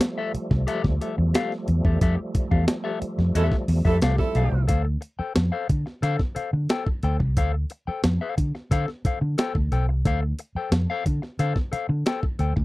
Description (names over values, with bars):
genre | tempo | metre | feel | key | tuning
funk | 90 BPM | 4/4 | straight | D minor | A4 = 439 Hz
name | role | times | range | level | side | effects
clean electric guitar | accompaniment | 0.0-12.6 s | G4 to G5 | -28 LUFS | left 6 dB | none
bright tonewheel organ | sustained chords | 0.0-4.7 s | F3 to A3 | -32 LUFS | right 2 dB | chorus vibrato, fast rotary speaker
breakbeat sampler-style drum kit | drums | 0.0-12.6 s | hi-hat, kick drum, snare drum | -25 LUFS | equal | none
vintage muted fingered electric bass | bass | 0.3-12.6 s | B1 to D3 | -22 LUFS | equal | none
mellow horn section | second line | 3.4-4.7 s | A3 to A4 | -27 LUFS | right 4 dB | none
room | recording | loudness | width
little or no reverb | dry, close 1970s-style studio recording | -22 LUFS | side -19 dB against mid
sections
0.0-4.7 A section; 4.7-12.6 B section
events
band accent 2.0-4.7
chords
0.0 Fmaj9; 4.7 Dm7